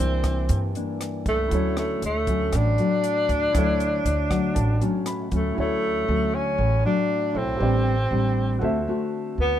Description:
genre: bossa nova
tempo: 118 BPM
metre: 4/4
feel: straight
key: D major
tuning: A4 = 440 Hz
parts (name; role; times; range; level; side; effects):
- breathy tenor saxophone; melody; 0.0-9.6 s; A3 to D4; -25 LUFS; equal; none
- nylon-string guitar; accompaniment; 0.0-9.6 s; G2 to F#4; -27 LUFS; left 3 dB; none
- warm grand piano; accompaniment; 0.0-9.6 s; E4 to B5; -33 LUFS; right 1 dB; none
- upright bass; bass; 0.0-9.6 s; A1 to G2; -25 LUFS; right 1 dB; none
- compact cocktail drum kit; drums; 0.2-5.4 s; hi-hat, kick drum, rim click; -30 LUFS; equal; none
room: little or no reverb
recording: close, detailed microphones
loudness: -21 LUFS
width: side -10 dB against mid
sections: 0.0-5.6 A section; 5.6-9.6 A section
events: grand piano fill 4.0-5.6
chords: 0.0 C9; 1.5 Dmaj7; 7.6 Am11; 8.6 D7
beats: 0.49 1.00 | 1.51 2.02 2.52 3.03 | 3.54 4.05 4.55 5.06 | 5.57 6.08 6.59 7.09 | 7.60 8.11 8.62 9.12

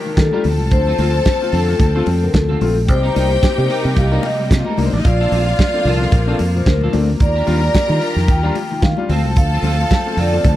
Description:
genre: disco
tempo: 111 BPM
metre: 4/4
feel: swing 56% on 16ths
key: unclear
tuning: A4 = 441 Hz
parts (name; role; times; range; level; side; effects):
- vibraphone with soft mallets; melody; 0.0-10.6 s; A4 to A5; -21 LUFS; left 2 dB; none
- clear studio string section; second line; 0.0-10.6 s; F3 to Bb5; -25 LUFS; equal; none
- clear studio string section; sustained chords; 0.0-10.6 s; C3 to G4; -27 LUFS; left 1 dB; none
- clean electric guitar; accompaniment; 0.1-10.5 s; C4 to Bb4; -28 LUFS; right 3 dB; analog chorus
- warm concert grand piano; accompaniment; 0.1-10.4 s; Bb2 to F4; -25 LUFS; left 4 dB; none
- fingered electric bass; bass; 0.2-10.6 s; A1 to Eb3; -17 LUFS; equal; none
- warm soul drum kit; drums; 0.2-10.6 s; hi-hat, kick drum, snare drum; -16 LUFS; right 1 dB; none
- congas; percussion; 0.2-10.6 s; none; -27 LUFS; left 7 dB; none
room: little or no reverb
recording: dry, close 1970s-style studio recording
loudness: -13 LUFS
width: side -14 dB against mid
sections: 0.0-10.6 A section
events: none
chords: 0.4 Dm7; 2.9 Cm7; 5.0 Bbmaj7; 7.2 Ebmaj7; 9.1 Dm7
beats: 0.17 | 0.72 1.26 1.80 2.34 | 2.88 3.42 3.97 4.51 | 5.05 5.59 6.13 6.67 | 7.21 7.75 8.29 8.83 | 9.37 9.91 10.45

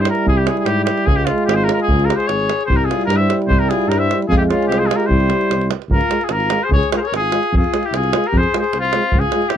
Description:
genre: balkan folk, Balkan brass band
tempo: 149 BPM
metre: 2/4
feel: straight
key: unclear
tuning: A4 = 440 Hz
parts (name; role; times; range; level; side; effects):
- clear trumpet; melody; 0.0-9.6 s; F4 to E5; -20 LUFS; left 1 dB; none
- mellow euphonium; accompaniment; 0.0-9.4 s; G3 to Ab3; -21 LUFS; right 5 dB; none
- warm French horn; accompaniment; 0.0-9.4 s; E4 to F4; -24 LUFS; left 6 dB; none
- dark tuba; bass; 0.0-9.6 s; Ab1 to Ab2; -20 LUFS; equal; none
- davul; percussion; 0.1-9.6 s; none; -20 LUFS; right 2 dB; none
- mellow alto saxophone; second line; 1.9-9.6 s; C4 to C5; -24 LUFS; left 12 dB; none
room: light reverb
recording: dry, close 1970s-style studio recording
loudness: -14 LUFS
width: side -9 dB against mid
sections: 0.0-5.9 A section; 5.9-9.6 B section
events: none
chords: 0.0 C; 1.1 Db; 2.7 C; 4.3 Fm; 5.1 C; 5.9 Db; 7.5 Fm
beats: | 0.26 0.67 | 1.07 1.47 | 1.88 2.28 | 2.69 3.09 | 3.50 3.90 | 4.30 4.71 | 5.11 5.52 | 5.92 6.32 | 6.73 7.13 | 7.53 7.93 | 8.34 8.74 | 9.14 9.54

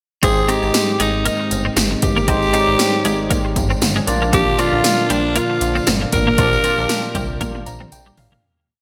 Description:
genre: 1980s-style pop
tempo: 117 BPM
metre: 4/4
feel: swing 55% on 16ths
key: unclear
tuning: A4 = 441 Hz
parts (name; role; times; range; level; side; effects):
- breathy alto saxophone; melody; 0.2-7.6 s; D4 to Bb4; -22 LUFS; equal; none
- barky tine electric piano; accompaniment; 0.2-8.5 s; Ab2 to Bb5; -24 LUFS; equal; analog chorus
- phased analog pad; sustained chords; 0.2-8.4 s; D3 to G4; -31 LUFS; equal; none
- twelve-string electric guitar; riff; 0.2-8.4 s; G3 to C4; -27 LUFS; equal; ensemble chorus
- chorused synth bass; bass; 0.2-8.4 s; G1 to C2; -26 LUFS; equal; none
- 80s electronic pad drums; drums; 0.2-8.4 s; hi-hat, kick drum, snare drum, toms; -22 LUFS; equal; gated reverb on snare and toms, overdrive, gated reverb
- tambourine; percussion; 0.2-8.3 s; none; -33 LUFS; equal; none
room: moderate lush hall reverb, RT60 1.9 s, digital ambience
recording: bright 1980s-style digital production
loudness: -17 LUFS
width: mono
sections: 0.2-8.4 pre-chorus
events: fade-out 6.4-8.4; drum fill 7.4-8.4; tine electric piano fill 7.4-8.4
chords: 0.2 Abmaj7; 4.1 Bb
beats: | 0.23 0.74 1.25 1.77 | 2.28 2.79 3.31 3.82 | 4.33 4.84 5.36 5.87 | 6.38 6.90 7.41 7.92

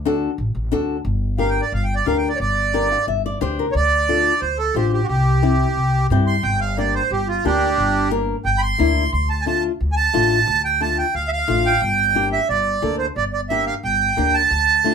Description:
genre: latin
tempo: 178 BPM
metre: 4/4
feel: straight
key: unclear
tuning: A4 = 440 Hz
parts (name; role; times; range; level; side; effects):
- upright bass; bass; 0.0-14.9 s; G1 to G2; -22 LUFS; equal; none
- flamenco guitar; accompaniment; 0.1-14.9 s; A3 to F5; -22 LUFS; left 6 dB; none
- accordion; melody; 1.4-14.9 s; D4 to C6; -19 LUFS; right 5 dB; none
room: moderate small room ambience, RT60 0.5 s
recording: band playing live in one room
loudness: -17 LUFS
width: side -6 dB against mid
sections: 0.0-1.1 A section; 1.1-11.8 B section; 11.8-14.9 C section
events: accordion solo 1.1-11.8; nylon-string guitar fill 2.7-3.8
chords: 0.0 D; 1.1 Gm; 3.8 Dm; 5.1 C; 6.4 Gm; 9.1 Dm; 11.8 Gm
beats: 0.05 0.39 0.72 | 1.06 1.40 1.73 2.07 | 2.40 2.74 3.08 3.41 | 3.75 4.09 4.42 4.76 | 5.10 5.43 5.77 6.11 | 6.44 6.78 7.12 7.45 | 7.79 8.12 8.46 8.80 | 9.13 9.47 9.80 10.14 | 10.48 10.81 11.15 11.48 | 11.82 12.15 12.49 12.83 | 13.16 13.50 13.83 14.17 | 14.51 14.84

